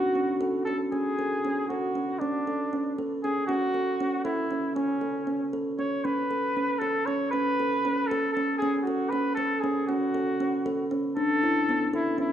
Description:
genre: contemporary instrumental, contemporary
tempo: 234 BPM (eighths)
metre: 5/8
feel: straight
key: unclear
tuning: A4 = 442 Hz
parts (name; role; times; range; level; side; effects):
- warm flugelhorn; melody; 0.0-12.3 s; C#4 to C#5; -29 LUFS; equal; none
- kalimba; arpeggios; 0.0-12.3 s; B3 to A4; -27 LUFS; right 1 dB; none
room: wet recital hall reverb, RT60 1.8 s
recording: dark, warm production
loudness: -25 LUFS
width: side -10 dB against mid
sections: 0.9-11.2 A section; 11.2-12.3 B section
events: none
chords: 0.0 F#m; 0.9 A/C#; 11.2 E7sus4

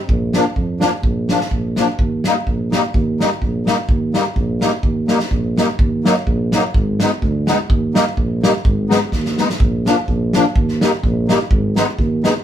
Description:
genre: alpine folk, alpine dance band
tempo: 126 BPM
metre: 2/4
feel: swing 54% on 8ths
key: Eb major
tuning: A4 = 441 Hz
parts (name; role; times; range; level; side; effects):
- mellow tuba; bass; 0.1-12.3 s; Ab1 to F2; -20 LUFS; right 2 dB; none
- loose indie drum kit; drums; 0.1-12.3 s; kick drum, snare drum; -18 LUFS; equal; none
- musette accordion; accompaniment; 0.4-12.3 s; F3 to Eb4; -18 LUFS; left 2 dB; none
room: moderate small room reverb, RT60 0.5 s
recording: band playing live in one room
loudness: -15 LUFS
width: side -10 dB against mid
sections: 0.0-5.8 A section; 5.8-12.4 B section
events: drum fill 9.1-9.6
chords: 0.1 Bb; 2.0 Eb; 5.8 Ebm; 6.8 Abm; 7.7 Eb; 8.7 Abm; 9.6 Bb; 10.6 Eb; 11.5 Abm

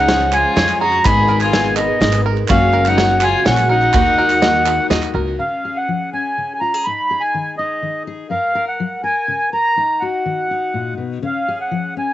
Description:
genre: indie folk with a building arrangement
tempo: 124 BPM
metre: 3/4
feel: straight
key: unclear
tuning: A4 = 439 Hz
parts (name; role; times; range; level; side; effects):
- mellow accordion; melody; 0.0-12.1 s; Eb5 to Cb6; -17 LUFS; right 1 dB; none
- warm fiddle; second line; 0.0-4.9 s; Cb4 to Ab4; -23 LUFS; left 7 dB; none
- picked old ladder-braced acoustic guitar; accompaniment; 0.0-5.4 s; Gb2 to Bb4; -22 LUFS; left 8 dB; none
- warm symphonic string section; sustained chords; 0.0-5.4 s; Cb3 to Ab4; -27 LUFS; right 10 dB; none
- bluegrass banjo; arpeggios; 0.0-5.4 s; Db4 to Eb5; -26 LUFS; right 8 dB; analog delay
- upright bass; bass; 0.0-5.4 s; Gb1 to F2; -20 LUFS; right 1 dB; none
- natural country drum kit; drums; 0.1-5.0 s; kick drum, ride cymbal, snare drum; -19 LUFS; right 1 dB; cassette tape
- egg shaker; percussion; 0.2-5.1 s; none; -44 LUFS; left 10 dB; none
- group handclap; percussion; 0.2-5.2 s; none; -28 LUFS; right 9 dB; none
- fingerpicked steel-string acoustic guitar; accompaniment; 5.4-12.1 s; Eb2 to Bb4; -25 LUFS; left 6 dB; none
room: light reverb, studio ambience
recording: home recording on cassette, nothing above 8.0 kHz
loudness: -14 LUFS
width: side -13 dB against mid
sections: 0.0-5.4 A section; 5.4-12.1 B section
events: none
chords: 0.0 Db; 1.0 Abmadd9; 2.5 Gb; 3.9 Ebm; 5.4 Db; 6.8 Ab5; 8.3 Gb; 9.8 Ebm; 11.2 Db

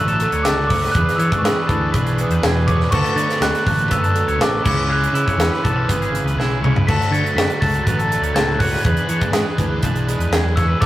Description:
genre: math rock and midwest emo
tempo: 122 BPM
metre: 4/4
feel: straight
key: unclear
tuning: A4 = 441 Hz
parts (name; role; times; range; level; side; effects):
- glockenspiel with rubber mallets; melody; 0.0-10.9 s; B5 to B6; -22 LUFS; equal; none
- clean electric guitar; accompaniment; 0.0-10.9 s; D2 to G#4; -24 LUFS; right 2 dB; none
- twangy electric guitar; arpeggios; 0.0-10.9 s; G#4 to D5; -26 LUFS; left 3 dB; spring reverb
- cranked stack guitar; riff; 0.0-10.9 s; C#3 to G#4; -28 LUFS; equal; overdrive
- modern bright fingered electric bass; bass; 0.0-10.9 s; G#1 to E3; -22 LUFS; equal; none
- crisp fusion drum kit; drums; 0.1-10.9 s; crash cymbal, hi-hat, kick drum, snare drum, toms; -20 LUFS; equal; none
room: moderate booth ambience, RT60 0.2 s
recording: rough rehearsal-room recording, tube saturation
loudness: -15 LUFS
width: side -14 dB against mid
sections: 0.0-10.9 A section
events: drum fill 6.4-6.9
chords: 0.0 Dmaj7; 0.9 E7; 2.9 Bm7; 4.6 C#m7; 6.9 Dmaj7; 8.8 E7

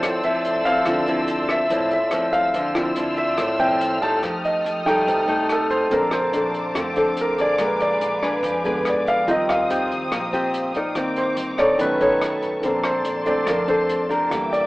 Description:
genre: bossa nova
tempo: 143 BPM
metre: 4/4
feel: straight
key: D minor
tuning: A4 = 440 Hz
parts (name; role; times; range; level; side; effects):
- nylon-string guitar; accompaniment; 0.0-14.7 s; A2 to D5; -23 LUFS; left 1 dB; none
- warm grand piano; accompaniment; 0.0-14.7 s; D3 to A5; -22 LUFS; equal; none
- dark symphonic string section; sustained chords; 0.0-14.7 s; Eb4 to F6; -28 LUFS; equal; none
- upright bass; bass; 0.0-14.7 s; A1 to Ab2; -38 LUFS; equal; none
- open jazz drum kit; drums; 0.0-14.6 s; hi-hat, kick drum, rim click; -31 LUFS; equal; none
room: moderate studio reverb, RT60 0.6 s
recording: band playing live in one room, AM radio sound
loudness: -18 LUFS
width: side -20 dB against mid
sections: 0.0-2.6 A section; 2.6-14.7 A section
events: grand piano solo 0.0-14.7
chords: 0.0 Dm9; 4.2 F9; 5.9 Bbmaj9; 7.6 Bb7b9; 9.3 Eb69; 11.0 Cm9; 11.8 B9; 12.6 Bbmaj9

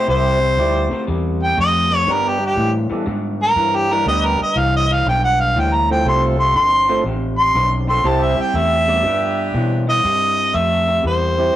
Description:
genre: electric blues shuffle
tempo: 120 BPM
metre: 4/4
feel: swing 68% on 8ths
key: C major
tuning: A4 = 440 Hz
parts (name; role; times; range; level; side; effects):
- warm harmonica; melody; 0.0-11.6 s; G4 to C6; -16 LUFS; equal; overdrive
- electric guitar through a small old amp; riff; 0.0-11.6 s; F2 to A3; -24 LUFS; left 2 dB; none
- warm saxophone section; stabs; 0.0-9.9 s; B3 to A4; -28 LUFS; right 2 dB; none
- tonewheel organ; accompaniment; 0.1-11.6 s; G3 to D5; -22 LUFS; right 3 dB; slow rotary speaker
- vintage muted fingered electric bass; bass; 0.1-11.5 s; G1 to B2; -21 LUFS; equal; none
room: moderate stone room reverb, RT60 1.1 s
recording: rough rehearsal-room recording, warm saturation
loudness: -14 LUFS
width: side -13 dB against mid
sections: 0.0-10.0 A section; 10.0-11.6 B section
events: harmonica solo 0.0-10.0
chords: 0.0 C; 2.1 G; 6.1 F; 8.1 C; 9.0 G; 10.0 C

